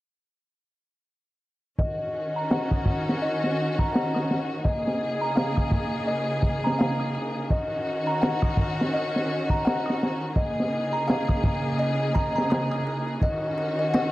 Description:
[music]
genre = trip hop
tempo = 84 BPM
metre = 4/4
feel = swing 59% on 16ths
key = Eb minor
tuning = A4 = 439 Hz
[part]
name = rich studio string section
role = sustained chords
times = 1.8-14.1 s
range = Db3 to Ab4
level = -28 LUFS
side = equal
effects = vintage 12-bit sampler grit
[part]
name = music box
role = arpeggios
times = 1.8-14.1 s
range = Eb5 to Eb6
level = -28 LUFS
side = left 1 dB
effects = low-pass filter, digital delay
[part]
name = crunchy breakbeat drum kit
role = drums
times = 1.8-14.1 s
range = hi-hat, kick drum, ride cymbal, snare drum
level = -26 LUFS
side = equal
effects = low-pass filter on kick, low-pass filter on cymbals, low-pass filter on hats, low-pass filter on snare, low-pass filter on room
[sound]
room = moderate spring reverb, RT60 2.9 s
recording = none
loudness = -23 LUFS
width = side -17 dB against mid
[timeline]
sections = 1.8-14.1 A section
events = filter sweep on music box 1.8-14.1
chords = 1.8 Ebm7; 4.6 Bbm7; 7.5 Ebm7; 10.4 Bbm7; 13.2 Ebm7

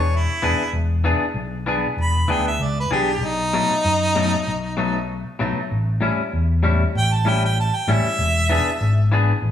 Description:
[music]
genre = blues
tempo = 97 BPM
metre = 4/4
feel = straight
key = unclear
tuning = A4 = 440 Hz
[part]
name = clear harmonica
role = melody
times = 0.0-9.1 s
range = D#4 to B5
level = -22 LUFS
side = right 1 dB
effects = none
[part]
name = fingered electric bass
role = bass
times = 0.0-9.5 s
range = E1 to F#2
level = -21 LUFS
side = left 1 dB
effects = none
[part]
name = clean electric guitar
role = stabs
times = 0.4-9.3 s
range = A2 to G#4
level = -23 LUFS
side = left 3 dB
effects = spring reverb
[sound]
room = wet stone room reverb, RT60 1.2 s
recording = band playing live in one room, studio ambience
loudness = -18 LUFS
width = side -10 dB against mid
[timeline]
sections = 0.0-9.5 A section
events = harmonica solo 0.0-9.5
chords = 0.0 E7; 3.2 B7; 5.7 A7; 8.2 E7

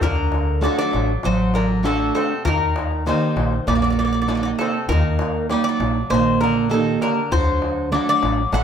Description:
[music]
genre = greek folk, Greek bouzouki band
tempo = 99 BPM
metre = 4/4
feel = straight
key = unclear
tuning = A4 = 435 Hz
[part]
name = Greek bouzouki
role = melody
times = 0.0-8.6 s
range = A4 to F#5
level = -23 LUFS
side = left 2 dB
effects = slapback echo
[part]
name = Greek bouzouki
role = second line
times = 0.0-8.6 s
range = C3 to A3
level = -28 LUFS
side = left 1 dB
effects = none
[part]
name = picked plugged-in steel-string acoustic guitar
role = accompaniment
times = 0.0-8.6 s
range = D3 to G5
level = -22 LUFS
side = right 5 dB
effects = none
[part]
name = upright bass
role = bass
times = 0.0-8.6 s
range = A1 to Eb2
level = -23 LUFS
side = equal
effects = none
[part]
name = darbuka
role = percussion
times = 0.0-8.6 s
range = none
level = -26 LUFS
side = left 3 dB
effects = none
[sound]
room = moderate small room reverb, RT60 0.6 s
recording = none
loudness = -17 LUFS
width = side -8 dB against mid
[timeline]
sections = 0.0-8.6 A section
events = none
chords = 0.0 D; 2.5 Eb; 7.3 D

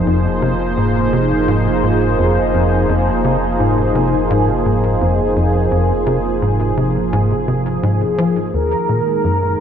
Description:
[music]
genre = ambient, sequencer-driven space music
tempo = 85 BPM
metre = 4/4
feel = straight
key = unclear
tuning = A4 = 440 Hz
[part]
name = lush unison pad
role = sustained chords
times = 0.0-9.6 s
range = Eb3 to C5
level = -16 LUFS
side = equal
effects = chorus, phaser
[part]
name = tight sequencer bass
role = riff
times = 0.0-9.6 s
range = Eb2 to F3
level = -18 LUFS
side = equal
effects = wide subtle chorus, tape echo
[part]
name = warm sub bass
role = bass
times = 0.0-9.6 s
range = Eb1 to F1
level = -25 LUFS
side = equal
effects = none
[part]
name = expressive synth lead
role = melody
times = 8.5-9.6 s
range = Bb4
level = -18 LUFS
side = right 3 dB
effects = analog chorus
[sound]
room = moderate plate reverb, RT60 3.0 s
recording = none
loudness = -14 LUFS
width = side -8 dB against mid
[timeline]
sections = 0.0-9.6 A section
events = none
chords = 0.0 Fm; 8.5 Ebm

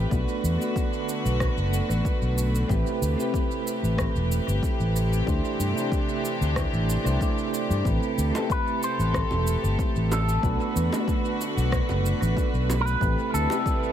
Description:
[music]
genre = sunset chillout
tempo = 93 BPM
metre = 4/4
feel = straight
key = A dorian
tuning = A4 = 440 Hz
[part]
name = soft electric-piano-like synth keys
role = accompaniment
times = 0.0-13.9 s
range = A3 to D5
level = -29 LUFS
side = right 1 dB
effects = chorus, tremolo, auto-pan, tape echo
[part]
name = clear studio string section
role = sustained chords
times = 0.0-13.9 s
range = C3 to B4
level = -32 LUFS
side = equal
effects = none
[part]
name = fingered electric bass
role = bass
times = 0.0-13.5 s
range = E1 to G2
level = -24 LUFS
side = equal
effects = none
[part]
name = electronic cabasa and rim click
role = drums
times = 0.1-13.8 s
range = none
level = -36 LUFS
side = right 1 dB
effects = tape echo
[part]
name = electronic kick drum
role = drums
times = 0.1-13.8 s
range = none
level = -27 LUFS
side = equal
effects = none
[part]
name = bongos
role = percussion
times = 8.3-13.6 s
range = none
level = -37 LUFS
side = right 2 dB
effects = none
[part]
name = electric guitar with an envelope filter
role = melody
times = 8.5-13.9 s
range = A4 to C5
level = -30 LUFS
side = left 1 dB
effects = phaser, tape echo
[sound]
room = light reverb, digital ambience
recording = echo-heavy mix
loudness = -22 LUFS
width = side -10 dB against mid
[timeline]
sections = 0.0-13.9 A section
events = none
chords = 0.1 Bm7; 2.7 Am9; 5.3 D9sus4; 7.9 Am9; 10.4 Bm7; 13.0 Am9

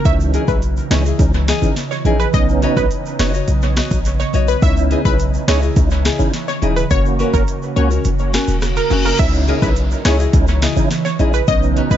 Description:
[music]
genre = dancehall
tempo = 105 BPM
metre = 4/4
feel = straight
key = C# dorian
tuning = A4 = 440 Hz
[part]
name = tonewheel organ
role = accompaniment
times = 0.0-12.0 s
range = E3 to F#4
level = -23 LUFS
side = right 3 dB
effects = chorus vibrato, slow rotary speaker, dub echo
[part]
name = ethereal airy pad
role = sustained chords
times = 0.0-12.0 s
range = C#3 to D#5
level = -24 LUFS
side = right 2 dB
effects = ensemble chorus, built-in reverb, sidechain pumping
[part]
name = egg shaker and timbales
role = percussion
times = 0.0-12.0 s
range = none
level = -35 LUFS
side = right 5 dB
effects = dub echo
[part]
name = analog pluck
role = melody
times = 0.1-12.0 s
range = A#4 to E5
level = -23 LUFS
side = right 1 dB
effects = chorus, dub echo
[part]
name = warm 808-style bass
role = bass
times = 0.1-12.0 s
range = E1 to C#2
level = -17 LUFS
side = equal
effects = none
[part]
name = afro-pop drum kit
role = drums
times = 0.1-12.0 s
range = crash cymbal, hi-hat, kick drum, rim click, snare drum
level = -19 LUFS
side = equal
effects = vintage 12-bit sampler grit, dub echo
[part]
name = nylon-string guitar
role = arpeggios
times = 0.3-12.0 s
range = C#4 to D#5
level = -23 LUFS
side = left 6 dB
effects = none
[part]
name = reverse cymbal and downlifter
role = sound effects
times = 8.5-12.0 s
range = none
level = -28 LUFS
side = left 3 dB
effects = none
[sound]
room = little or no reverb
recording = echo-heavy mix, nothing above 7.7 kHz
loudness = -13 LUFS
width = side -11 dB against mid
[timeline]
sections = 0.0-9.2 A section; 9.2-12.0 B section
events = kick muted 8.1-9.2; reverse cymbal 8.5-9.2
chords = 0.1 C#madd9; 2.3 Badd9; 4.6 C#madd9; 6.9 F#; 9.2 C#madd9

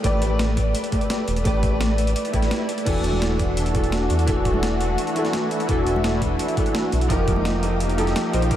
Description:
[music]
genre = liquid drum and bass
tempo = 170 BPM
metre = 4/4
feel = straight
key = unclear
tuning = A4 = 436 Hz
[part]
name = warm baby grand piano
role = accompaniment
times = 0.0-8.6 s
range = E3 to D5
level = -23 LUFS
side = equal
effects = ensemble chorus, diffuse ambient delay
[part]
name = smooth synth bass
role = bass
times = 0.0-8.6 s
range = E1 to E2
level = -23 LUFS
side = equal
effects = none
[part]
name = breakbeat sampler-style drum kit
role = drums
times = 0.0-8.6 s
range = crash cymbal, hi-hat, snare drum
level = -28 LUFS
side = equal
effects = overdrive
[part]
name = electronic kick drum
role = drums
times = 0.0-8.6 s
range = none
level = -25 LUFS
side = equal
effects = overdrive
[part]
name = swell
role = sound effects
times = 2.2-2.9 s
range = none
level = -40 LUFS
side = right 1 dB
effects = none
[part]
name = lush unison pad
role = sustained chords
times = 2.9-8.6 s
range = A3 to G4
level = -28 LUFS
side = equal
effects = chorus, sidechain pumping
[part]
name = congas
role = percussion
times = 3.1-7.4 s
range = none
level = -36 LUFS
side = left 4 dB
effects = none
[sound]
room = moderate huge ambient reverb, RT60 9.1 s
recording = dreamy mix soaked in reverb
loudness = -19 LUFS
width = side -11 dB against mid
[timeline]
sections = 0.0-8.6 A section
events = swell 2.2-2.9; break 2.5-2.9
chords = 0.0 A9sus4; 2.9 E9sus4; 7.1 F9sus4

